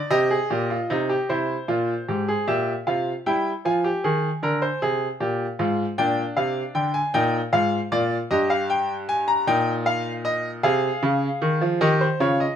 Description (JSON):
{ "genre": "classical, baroque-style 3-part fugue for grand piano", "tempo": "51 BPM (dotted quarters)", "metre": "12/8", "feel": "straight", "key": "C minor", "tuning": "A4 = 440 Hz", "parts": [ { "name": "bright baby grand piano", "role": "solo", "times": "0.0-12.6 s", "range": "G2 to Bb5", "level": "-20 LUFS", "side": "equal", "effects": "none" } ], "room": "light reverb", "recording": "minimal, uncompressed stereo recording", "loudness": "-20 LUFS", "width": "side -9 dB against mid", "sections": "0.0-1.3 A section; 1.3-12.6 B section", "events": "none", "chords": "0.0 Cm; 1.3 C7; 3.6 Bb7; 8.3 Eb/G; 10.6 Ab/C" }